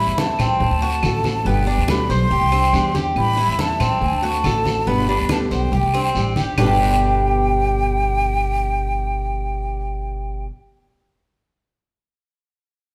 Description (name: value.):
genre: latin, Cuban son and guajira.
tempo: 140 BPM.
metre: 4/4.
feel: straight.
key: G major.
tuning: A4 = 441 Hz.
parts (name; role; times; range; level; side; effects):
breathy mellow silver concert flute; melody; 0.0-10.4 s; G5 to C6; -25 LUFS; equal; none.
nylon-string guitar; accompaniment; 0.0-10.5 s; G2 to G4; -29 LUFS; equal; none.
Cuban tres; arpeggios; 0.0-10.5 s; G3 to C5; -25 LUFS; equal; none.
upright bass; bass; 0.0-10.4 s; G1 to E2; -24 LUFS; equal; none.
congas; percussion; 0.2-6.7 s; none; -27 LUFS; equal; none.
guiro; percussion; 0.2-6.7 s; none; -35 LUFS; equal; none.
claves; percussion; 0.4-6.7 s; none; -34 LUFS; equal; none.
room: moderate large studio reverb, RT60 1.1 s.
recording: band playing live in one room.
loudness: -19 LUFS.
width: mono.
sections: 0.0-6.6 A section; 6.6-10.0 B section.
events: none.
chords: 0.0 Am7; 0.6 D7; 1.5 G; 2.3 Csus2; 3.2 Am7; 4.0 D7; 4.9 G; 5.7 Csus2; 6.6 G.